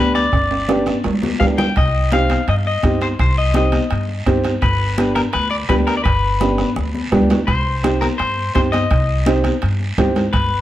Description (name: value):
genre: latin, cumbia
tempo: 168 BPM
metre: 4/4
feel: straight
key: C harmonic minor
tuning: A4 = 439 Hz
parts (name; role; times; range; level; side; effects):
- clean electric guitar; melody; 0.0-10.6 s; Bb4 to G5; -21 LUFS; left 3 dB; spring reverb
- warm upright piano; accompaniment; 0.0-10.2 s; B3 to G4; -20 LUFS; right 2 dB; none
- upright bass; bass; 0.0-10.6 s; G1 to G2; -20 LUFS; equal; none
- bombo; percussion; 0.1-10.5 s; none; -21 LUFS; right 1 dB; none
- congas; percussion; 0.2-10.5 s; none; -23 LUFS; left 3 dB; none
- guiro; percussion; 0.2-10.6 s; none; -33 LUFS; right 2 dB; none
- timbales; percussion; 0.2-10.5 s; none; -27 LUFS; right 3 dB; none
room: moderate studio reverb, RT60 0.8 s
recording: dark, warm production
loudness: -15 LUFS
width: side -13 dB against mid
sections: 0.0-7.5 A section; 7.5-10.6 A section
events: drum fill 0.3-1.8, 6.4-7.5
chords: 0.0 G; 1.8 Cm; 4.6 G; 7.5 Cm